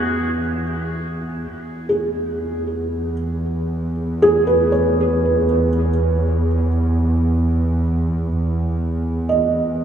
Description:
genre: ambient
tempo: free time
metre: none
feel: none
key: E major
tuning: A4 = 440 Hz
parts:
  - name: felt-muted upright piano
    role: arpeggios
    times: 0.0-9.8 s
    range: E4 to D#5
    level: -20 LUFS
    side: right 1 dB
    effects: tape echo
  - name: rich studio double bass section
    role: bass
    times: 0.0-9.8 s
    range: E2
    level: -20 LUFS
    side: right 1 dB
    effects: none
room: wet cathedral reverb, RT60 5.3 s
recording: in a vast, echoing space, studio reverb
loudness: -17 LUFS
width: side -9 dB against mid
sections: 0.0-9.8 A section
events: none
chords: 0.0 E

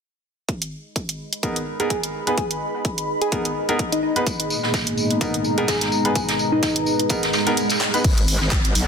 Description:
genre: bass house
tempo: 127 BPM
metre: 4/4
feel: swing 56% on 16ths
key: G# minor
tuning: A4 = 439 Hz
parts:
  - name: electronic kick drum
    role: drums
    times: 0.5-8.6 s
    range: none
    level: -26 LUFS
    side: equal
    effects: overdrive, high-pass filter on kick
  - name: garage drum kit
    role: drums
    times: 0.5-8.9 s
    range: crash cymbal, handclaps, hi-hat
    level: -25 LUFS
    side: right 1 dB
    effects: overdrive
  - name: deep dark ambient pad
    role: texture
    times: 1.3-8.9 s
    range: G#4 to B5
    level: -28 LUFS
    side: left 1 dB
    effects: chorus, built-in reverb, sidechain pumping
  - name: clear grand piano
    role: stabs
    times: 1.4-8.0 s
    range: B3 to B4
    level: -26 LUFS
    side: equal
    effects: sidechain pumping, low-pass filter, tape echo
  - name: soft struck synth lead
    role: melody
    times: 1.8-7.0 s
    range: D#4 to G#4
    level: -26 LUFS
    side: equal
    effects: chorus, tape echo
  - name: dark analog pad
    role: sustained chords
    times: 4.3-8.0 s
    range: G#3 to B4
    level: -26 LUFS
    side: left 1 dB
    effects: wide subtle chorus, sidechain pumping
  - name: vintage brush drum kit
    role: drums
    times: 4.3-8.9 s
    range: hi-hat, snare drum, tambourine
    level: -26 LUFS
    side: equal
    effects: sidechain pumping on hats, high-pass filter on hats, high-pass filter on snare, sidechain pumping on perc, high-pass filter on perc, high-pass filter on room
  - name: swell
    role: sound effects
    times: 7.3-8.0 s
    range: none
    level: -28 LUFS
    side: right 6 dB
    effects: none
  - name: metallic wobble bass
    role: bass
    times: 8.0-8.9 s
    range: G#1 to B1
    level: -23 LUFS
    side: equal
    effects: chorus, tube saturation, sidechain pumping
room: moderate lush hall reverb, RT60 2.1 s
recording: dense, heavily limited modern master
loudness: -19 LUFS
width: side -6 dB against mid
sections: 0.5-8.0 A section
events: swell 7.3-8.0; kick drops out 7.6-8.0; drum fill 7.8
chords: 0.5 G#madd9; 8.0 G#m

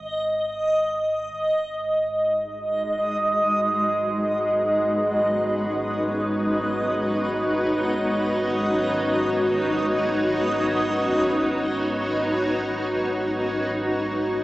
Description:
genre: dark ambient drone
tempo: free time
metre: none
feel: none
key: unclear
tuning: A4 = 440 Hz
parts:
  - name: deep rumbling drone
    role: drone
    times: 0.0-14.4 s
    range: G#1 to G#2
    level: -37 LUFS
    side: equal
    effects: built-in reverb
  - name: backwards swelling texture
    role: texture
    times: 0.0-14.4 s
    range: D#5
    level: -24 LUFS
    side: equal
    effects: built-in reverb
  - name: granular cloud pad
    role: sustained chords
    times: 2.7-14.4 s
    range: G#3 to C#5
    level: -23 LUFS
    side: equal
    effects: built-in reverb
room: wet cathedral reverb, RT60 5.4 s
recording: in a vast, echoing space, small speaker sound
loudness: -21 LUFS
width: side -17 dB against mid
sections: 0.0-1.3 A section; 1.3-14.4 B section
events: fade-out on synth texture 1.3-14.4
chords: 0.0 G#5; 1.3 G#m7

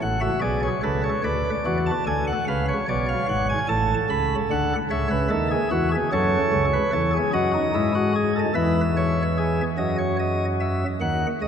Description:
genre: classical, baroque-style 3-part fugue for pipe organ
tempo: 49 BPM (dotted quarters)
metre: 6/8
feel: straight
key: F# minor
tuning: A4 = 440 Hz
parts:
  - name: chamber organ, sparkling flutes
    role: solo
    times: 0.0-11.5 s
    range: G#1 to B5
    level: -20 LUFS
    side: equal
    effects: none
room: wet cathedral reverb, RT60 5.1 s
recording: none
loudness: -20 LUFS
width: side -7 dB against mid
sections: 0.0-9.8 A section; 9.8-11.5 B section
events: none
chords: 0.0 F#m/A; 1.3 Bm/D; 2.5 C#7; 3.7 F#m/A; 4.9 C#m; 6.1 F#m; 7.3 G#5/F#; 8.6 C#m/E; 9.8 F#5

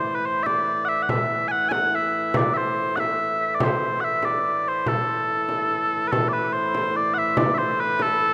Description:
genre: medieval dance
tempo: 96 BPM (dotted quarters)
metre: 6/8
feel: straight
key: A dorian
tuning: A4 = 439 Hz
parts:
  - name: mellow small bagpipes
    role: melody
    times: 0.0-8.3 s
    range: A4 to G#5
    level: -24 LUFS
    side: equal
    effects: none
  - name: pedal harmonium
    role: drone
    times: 0.0-8.3 s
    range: A2 to E3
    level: -34 LUFS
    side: equal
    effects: none
  - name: frame drum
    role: percussion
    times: 0.5-8.3 s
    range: none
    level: -30 LUFS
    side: equal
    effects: none
room: wet lush hall reverb, RT60 2.8 s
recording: rough home demo mix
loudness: -23 LUFS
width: mono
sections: 0.0-6.1 A section; 6.1-8.3 B section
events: none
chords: none

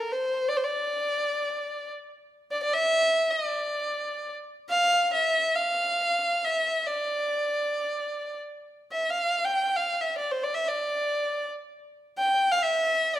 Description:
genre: Turkish makam ensemble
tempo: free time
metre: none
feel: none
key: D makam ussak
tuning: A4 = 440 Hz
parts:
  - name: warm violin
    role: solo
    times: 0.0-13.2 s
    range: Bb4 to G5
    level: -24 LUFS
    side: equal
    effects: none
room: light reverb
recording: minimal, uncompressed stereo recording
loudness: -24 LUFS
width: side -13 dB against mid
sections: 0.0-13.2 A section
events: none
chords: none

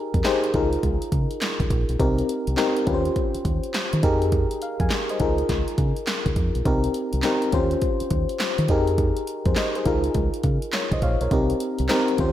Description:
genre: R&B, new jack swing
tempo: 103 BPM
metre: 4/4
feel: swing 63% on 16ths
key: F minor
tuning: A4 = 439 Hz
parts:
  - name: FM electric piano with auto-pan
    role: accompaniment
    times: 0.0-12.3 s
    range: C4 to Ab5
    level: -24 LUFS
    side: left 2 dB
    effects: none
  - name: deep dub fingered electric bass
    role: bass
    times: 0.1-12.3 s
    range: Bb1 to Eb3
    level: -25 LUFS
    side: equal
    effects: none
  - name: deep house drum kit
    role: drums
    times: 0.1-12.3 s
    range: handclaps, hi-hat, kick drum, snare drum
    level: -25 LUFS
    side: equal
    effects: none
room: moderate lush hall reverb, RT60 1.7 s, digital ambience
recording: big arena sound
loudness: -20 LUFS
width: side -12 dB against mid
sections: 0.0-12.3 A section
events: none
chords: 0.0 Fm11; 0.5 Db6; 2.0 Cm7; 2.9 Eb13; 4.0 Fm11; 5.2 Db6; 6.7 Cm7; 7.5 Eb13; 8.7 Fm11; 9.9 Db6; 11.3 Cm7

